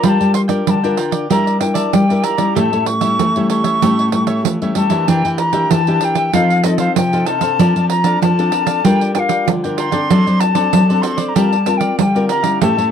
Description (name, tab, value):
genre	samba and choro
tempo	96 BPM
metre	4/4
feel	straight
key	unclear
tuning	A4 = 443 Hz
part	wooden flute	melody	0.0-12.9 s	Eb5 to C#6	-18 LUFS	left 2 dB	none
part	cavaquinho	accompaniment	0.0-12.9 s	D4 to A5	-25 LUFS	right 4 dB	none
part	nylon-string guitar	accompaniment	0.0-12.9 s	A2 to Bb4	-21 LUFS	left 4 dB	none
part	nylon-string guitar	bass	0.0-12.9 s	E3 to A3	-16 LUFS	left 1 dB	none
part	pandeiro	percussion	0.0-12.9 s	none	-20 LUFS	right 13 dB	none
room	little or no reverb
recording	dry, close 1970s-style studio recording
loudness	-13 LUFS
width	side -8 dB against mid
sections	0.0-12.9 A section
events	none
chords	0.0 Gm7; 1.3 Em7b5/G; 2.6 A7; 5.1 Em7b5; 6.3 F7; 7.6 Bbmaj9/F; 8.9 Gm7; 10.1 D7/F#; 11.4 Gm7